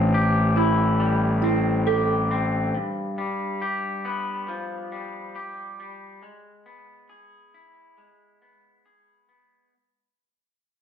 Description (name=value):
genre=rock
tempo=69 BPM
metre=4/4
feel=straight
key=unclear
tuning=A4 = 440 Hz
part: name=electric guitar through a small old amp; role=arpeggios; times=0.0-9.7 s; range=G2 to G#4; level=-27 LUFS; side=left 3 dB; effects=none
part: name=folk marimba with medium mallets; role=arpeggios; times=0.0-2.7 s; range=D4 to A4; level=-27 LUFS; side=right 7 dB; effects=none
part: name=fuzz fingered electric bass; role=bass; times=0.0-2.7 s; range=A1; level=-22 LUFS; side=equal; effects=overdrive
room=wet large studio reverb, RT60 1.3 s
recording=band playing live in one room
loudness=-22 LUFS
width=side -8 dB against mid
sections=0.0-9.7 A section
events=fade-out 0.0-9.7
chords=0.0 Am7; 2.7 G7; 6.2 E/G#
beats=0.13 1.00 1.87 | 2.74 3.61 4.49 5.36 | 6.23 7.11 7.98 8.85